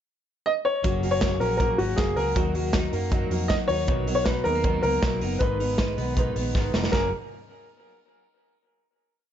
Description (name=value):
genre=jangly indie pop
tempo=158 BPM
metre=4/4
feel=straight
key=F# major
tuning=A4 = 440 Hz
part: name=warm upright piano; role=melody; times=0.5-7.1 s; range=F#4 to D#5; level=-26 LUFS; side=left 1 dB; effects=plate reverb
part: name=fingerpicked steel-string acoustic guitar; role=accompaniment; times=0.8-7.1 s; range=G#2 to B4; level=-32 LUFS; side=right 7 dB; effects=plate reverb
part: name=twelve-string electric guitar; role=arpeggios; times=0.8-7.1 s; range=D#3 to G#4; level=-32 LUFS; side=left 6 dB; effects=plate reverb
part: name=vintage muted fingered electric bass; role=bass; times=0.8-7.1 s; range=E#1 to F#2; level=-29 LUFS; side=equal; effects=none
part: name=modern studio drum kit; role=drums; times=0.8-7.0 s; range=hi-hat, kick drum, snare drum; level=-27 LUFS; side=equal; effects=none
room=moderate studio reverb, RT60 0.6 s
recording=nothing above 7.8 kHz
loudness=-22 LUFS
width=side -10 dB against mid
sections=0.0-0.8 pickup bar; 0.8-6.9 verse; 6.9-8.4 final chord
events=drum fill 6.5-6.9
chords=0.0 N.C.; 0.8 F#add9; 2.4 D#m; 3.9 Bmaj7; 5.4 G#m; 6.9 F#add9